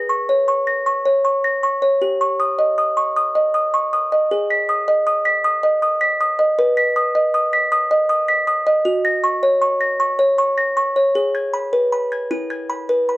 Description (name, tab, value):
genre	classical, lullaby for music box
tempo	52 BPM (dotted quarters)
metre	6/8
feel	straight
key	G# minor, B major from 6.6 s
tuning	A4 = 436 Hz
part	music box	solo	0.0-13.2 s	E4 to B6	-15 LUFS	equal	none
room	little or no reverb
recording	close, detailed microphones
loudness	-15 LUFS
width	side -18 dB against mid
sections	0.0-13.2 A section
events	none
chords	0.0 G#sus24; 2.0 D#7/G; 4.3 G#m; 6.6 B; 8.9 F#; 11.2 G#m; 12.3 E